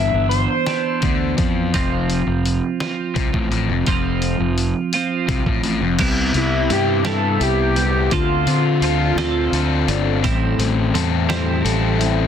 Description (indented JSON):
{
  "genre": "indie rock",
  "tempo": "56 BPM (dotted quarters)",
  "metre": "6/8",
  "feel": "straight",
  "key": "unclear",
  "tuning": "A4 = 440 Hz",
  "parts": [
    { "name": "overdriven synth lead", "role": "melody", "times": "0.0-1.3, 6.4-10.2 s", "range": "E4 to E5", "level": "-21 LUFS", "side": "equal", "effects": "phaser, slapback echo" },
    { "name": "crunchy overdriven guitar", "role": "riff", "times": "0.0-12.3 s", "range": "F2 to A4", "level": "-22 LUFS", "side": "left 9 dB", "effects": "none" },
    { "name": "twelve-string electric guitar", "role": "riff", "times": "0.0-12.3 s", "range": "E3 to A4", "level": "-24 LUFS", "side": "right 7 dB", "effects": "analog chorus, slapback echo" },
    { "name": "fuzz fingered electric bass", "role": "bass", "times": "0.0-12.3 s", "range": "F1 to D3", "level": "-21 LUFS", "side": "equal", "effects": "overdrive" },
    { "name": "lo-fi sampler-style drum kit", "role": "drums", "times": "0.3-12.2 s", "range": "crash cymbal, hi-hat, kick drum, snare drum", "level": "-24 LUFS", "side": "equal", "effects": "none" },
    { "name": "dark analog pad", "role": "sustained chords", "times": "6.6-12.3 s", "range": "B3 to G5", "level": "-32 LUFS", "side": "right 2 dB", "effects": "chorus" }
  ],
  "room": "light reverb",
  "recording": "dense, heavily limited modern master",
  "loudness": "-16 LUFS",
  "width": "side -8 dB against mid",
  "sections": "0.0-6.0 A section; 6.0-12.3 B section",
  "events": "kick and snare drop out 4.9-6.0; analog synth lead solo 6.0-12.3",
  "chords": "0.0 G6; 1.7 F5; 6.0 Cmaj7; 8.1 Dm7; 10.2 Am7",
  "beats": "0.68 | 1.74 2.81 | 3.87 4.93 | 6.00 7.06 | 8.12 9.18 | 10.24 11.30"
}